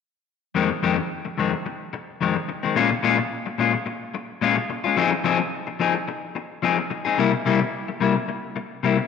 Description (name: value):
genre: blues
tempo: 109 BPM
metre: 4/4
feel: swing 54% on 16ths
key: F minor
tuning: A4 = 440 Hz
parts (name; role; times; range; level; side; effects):
- electric guitar at the edge of break-up; stabs; 0.5-9.0 s; F2 to Ab4; -21 LUFS; left 6 dB; spring reverb
room: wet echo chamber reverb, RT60 1.9 s, digital ambience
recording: none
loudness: -21 LUFS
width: side -6 dB against mid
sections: 0.6-9.1 A section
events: none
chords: 0.6 Fm7; 2.8 Bbm7; 5.0 Fm7; 7.2 C7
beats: | 0.55 1.11 1.66 2.21 | 2.76 3.31 3.87 4.42 | 4.97 5.52 6.08 6.63 | 7.18 7.73 8.29 8.84